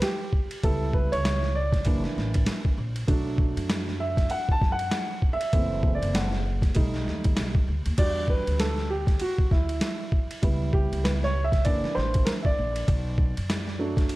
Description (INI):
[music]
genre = hip hop, jazz-hop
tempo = 98 BPM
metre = 4/4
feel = swing 60% on 16ths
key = E minor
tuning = A4 = 439 Hz
[part]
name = warm upright piano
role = accompaniment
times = 0.0-14.2 s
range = E3 to A5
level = -29 LUFS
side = right 2 dB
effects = none
[part]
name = boom bap sampler-style drum kit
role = drums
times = 0.0-14.2 s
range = crash cymbal, hi-hat, kick drum, ride cymbal, snare drum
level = -25 LUFS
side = equal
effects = none
[part]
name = upright bass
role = bass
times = 0.6-14.1 s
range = F#1 to F#2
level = -28 LUFS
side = equal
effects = none
[sound]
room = light reverb, digital ambience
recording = dark, warm production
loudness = -23 LUFS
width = side -18 dB against mid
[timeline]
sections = 0.0-8.0 A section; 8.0-14.2 A section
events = upright piano solo 0.0-8.0, 8.0-14.2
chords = 0.0 N.C.; 0.6 C#m7b5; 1.9 F#7alt; 3.1 Bm7; 5.5 F#m7b5; 6.8 B7b13; 8.0 Em7; 10.4 C#m7b5; 11.7 F#7alt; 12.9 Bm7